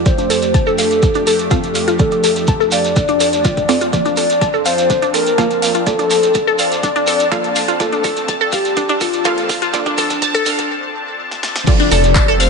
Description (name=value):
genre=progressive house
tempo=124 BPM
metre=4/4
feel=straight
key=unclear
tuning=A4 = 440 Hz
part: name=lush unison pad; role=sustained chords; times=0.0-12.5 s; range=F2 to A5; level=-23 LUFS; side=equal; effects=chorus, phaser, sidechain pumping
part: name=glassy wavetable pluck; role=arpeggios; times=0.0-12.5 s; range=D4 to A5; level=-19 LUFS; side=left 1 dB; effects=chorus, sidechain pumping, ping-pong delay
part: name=wide unison pluck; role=stabs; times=0.0-12.5 s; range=F3 to A5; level=-21 LUFS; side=right 4 dB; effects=sidechain pumping, ping-pong delay
part: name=soft octave-layered synth lead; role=melody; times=0.1-12.5 s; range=D4 to D5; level=-17 LUFS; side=left 2 dB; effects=chorus, phaser, cassette tape, dub echo
part: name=deep house drum kit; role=drums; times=0.1-12.5 s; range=crash cymbal, handclaps, hi-hat, rim click, snare drum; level=-24 LUFS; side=right 1 dB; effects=overdrive, sidechain pumping on hats, small room reverb, sidechain pumping on cymbals
part: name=electronic kick drum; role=drums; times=0.1-12.3 s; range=none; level=-17 LUFS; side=equal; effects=overdrive, small room reverb
part: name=shekere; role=percussion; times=0.1-12.5 s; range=none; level=-24 LUFS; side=right 3 dB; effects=none
part: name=downlifter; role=sound effects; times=11.7-12.5 s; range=none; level=-23 LUFS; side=left 1 dB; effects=none
part: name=dark detuned saw bass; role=bass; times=11.9-12.5 s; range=F1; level=-16 LUFS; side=equal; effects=sidechain pumping
room=moderate lush hall reverb, RT60 1.8 s, digital ambience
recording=high-pass filter, nothing above 10.3 kHz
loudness=-13 LUFS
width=side -4 dB against mid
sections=0.0-11.7 A section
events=build-up 0.0-11.7; filter sweep on synth arpeggio sound 0.0-11.7; filter sweep on synth pluck 0.0-11.7; filter sweep 0.0-11.7; drum fill 3.9-10.7, 11.3-11.7; break 10.7-11.7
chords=0.0 F6; 3.9 Bbmaj7/F; 11.7 F6